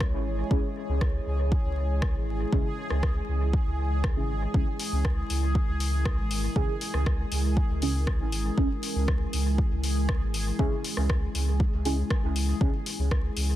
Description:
dub techno; 119 BPM; 4/4; straight; C# dorian; A4 = 440 Hz
deep dark ambient pad; sustained chords; 0.0-13.6 s; G#3 to D#5; -35 LUFS; equal; chorus, built-in reverb, sidechain pumping
warm sub bass; bass; 0.0-13.6 s; G#1 to C#2; -28 LUFS; equal; sidechain pumping
electronic kick drum; drums; 0.0-13.2 s; -26 LUFS; equal; overdrive
punchy analog drum machine; drums; 0.0-13.5 s; hi-hat, rim click; -35 LUFS; left 2 dB; overdrive, dub echo
bubbling stepped-filter texture; texture; 0.0-13.6 s; G#4; -39 LUFS; right 1 dB; chorus, built-in reverb, sidechain pumping
deep mellow chord stab; stabs; 0.5-12.7 s; C#4 to G#4; -35 LUFS; right 2 dB; chorus, phaser, sidechain pumping, dub echo
little or no reverb; dense, heavily limited modern master, vinyl crackle; -24 LUFS; side -14 dB against mid
0.0-13.6 A section
0.0 C#m
0.01 | 0.51 1.01 1.52 2.02 | 2.53 3.03 3.54 4.04 | 4.54 5.05 5.55 6.06 | 6.56 7.06 7.57 8.07 | 8.58 9.08 9.59 10.09 | 10.59 11.10 11.60 12.11 | 12.61 13.11

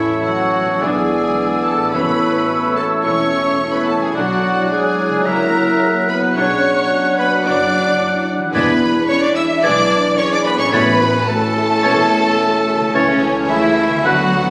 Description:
classical, dramatic, fast romantic movement for symphony orchestra; 109 BPM; 4/4; rubato; A major; A4 = 440 Hz
warm symphonic violin section; melody; 0.0-14.5 s; C#5 to E6; -27 LUFS; equal
clear clarinet; second line; 0.0-14.5 s; C#4 to E5; -27 LUFS; equal
clear oboe; second line; 0.0-14.2 s; B4 to F#5; -24 LUFS; equal
silver concert flute; second line; 0.0-14.3 s; E6 to A6; -24 LUFS; equal
warm symphonic violin section; second line; 0.0-14.5 s; C#4 to E5; -26 LUFS; equal
mellow bassoon; accompaniment; 0.0-14.2 s; D3 to B3; -28 LUFS; equal
clear trombone section; sustained chords; 0.0-14.5 s; E3 to E4; -26 LUFS; equal
concert harp; arpeggios; 0.0-14.5 s; A2 to B4; -28 LUFS; equal
dark trumpet section; stabs; 0.0-14.5 s; C#4 to E5; -24 LUFS; equal
clear chamber double bass section; bass; 0.0-14.5 s; E1 to E2; -30 LUFS; equal
rich symphonic cello section; bass; 0.0-14.5 s; C#3 to E4; -27 LUFS; equal
rich symphonic viola section; accompaniment; 0.8-14.5 s; D3 to E4; -29 LUFS; equal
dark French horn section; sustained chords; 0.8-14.5 s; D4 to B4; -30 LUFS; equal
timpani; percussion; 1.9-2.7, 8.6-11.5 s; E2 to A2; -35 LUFS; equal
moderate concert hall reverb, RT60 2.1 s; recorded on a phone in the room, club reverb, compression; -16 LUFS; mono
0.0-14.5 A section
0.0 A; 0.8 E7/B; 1.9 A; 4.2 Bm7; 5.3 F#7/C#; 6.4 Bm; 8.6 E7; 10.7 A; 12.9 A/C#
0.26 0.82 1.38 | 1.94 2.49 3.04 3.60 | 4.16 4.71 5.26 5.82 | 6.37 6.92 7.46 8.01 | 8.55 9.09 9.64 10.19 | 10.73 11.29 11.84 12.39 | 12.94 13.49 14.05

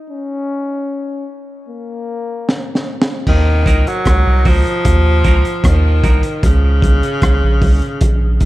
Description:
dub reggae; 76 BPM; 4/4; straight; Eb dorian; A4 = 440 Hz
warm trombone; second line; 0.1-5.4 s; Bb3 to Eb4; -26 LUFS; left 3 dB; high-pass filter, dub echo
crunchy breakbeat drum kit; drums; 2.5-8.5 s; crash cymbal, hi-hat, kick drum, rim click, snare drum; -16 LUFS; equal
warm tenor saxophone; melody; 3.3-8.5 s; Db3 to Gb3; -18 LUFS; equal; dub echo
soft dub sub bass; bass; 3.3-8.5 s; Ab1 to Eb2; -13 LUFS; equal
clean electric guitar; accompaniment; 3.7-6.3 s; Bb3 to Bb4; -29 LUFS; right 6 dB; high-pass filter, dub echo
clear grand piano; stabs; 3.7-3.8 s; Gb4 to Eb5; -36 LUFS; left 2 dB
little or no reverb; dark, warm production; -12 LUFS; side -17 dB against mid
0.0-3.3 A section; 3.3-8.5 B section
break 0.0-3.3; filter sweep 0.1-6.4; drum fill 2.5-3.3
0.0 N.C.; 3.3 Ebm; 6.4 Bbmadd9
| 0.10 0.89 1.69 2.48 | 3.27 4.06 4.85 5.64 | 6.43 7.22 8.01

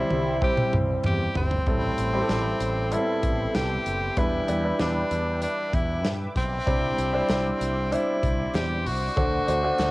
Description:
1980s-style pop; 96 BPM; 4/4; straight; A4 = 440 Hz
edgy tenor saxophone; melody; 0.0-9.9 s; C4 to G4; -29 LUFS; equal
clear baby grand piano; accompaniment; 0.0-9.9 s; A2 to C5; -27 LUFS; equal; cassette tape
sweeping resonant pad; sustained chords; 0.0-9.9 s; G4 to D6; -37 LUFS; equal
fretless electric bass; bass; 0.0-9.9 s; F#1 to G2; -29 LUFS; equal
modern studio drum kit; drums; 0.1-9.9 s; hi-hat, kick drum, snare drum, toms; -28 LUFS; equal; cassette tape
group handclap; percussion; 1.0-1.2, 7.3-9.9 s; -45 LUFS; left 2 dB
moderate booth ambience, RT60 0.2 s; home recording on cassette; -22 LUFS; side -20 dB against mid
0.0-1.7 A section; 1.7-9.9 B section
drum fill 0.0-1.7
0.0 C; 1.7 Am7; 4.2 Em7; 6.7 Cadd9; 9.2 D7
0.42 1.05 | 1.67 2.30 2.92 3.55 | 4.17 4.80 5.42 6.05 | 6.67 7.30 7.92 8.55 | 9.17 9.80

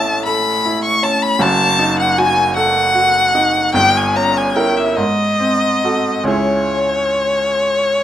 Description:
classical, romantic duo for violin and grand piano; 44-53 BPM (dotted quarters); 6/8; rubato; C# minor; A4 = 440 Hz
rich violin; melody; 0.0-8.0 s; C#5 to C#6; -15 LUFS; left 2 dB
bright baby grand piano; accompaniment; 0.0-8.0 s; F#1 to Bb4; -17 LUFS; right 2 dB
light reverb; close, detailed microphones; -13 LUFS; side -11 dB against mid
0.0-8.0 A section
0.0 A; 1.4 D#dim/F#; 3.8 Gdim7; 5.0 G#7b9; 6.3 C#m
0.27 | 1.41 2.58 | 3.77 4.99 | 6.30 7.65

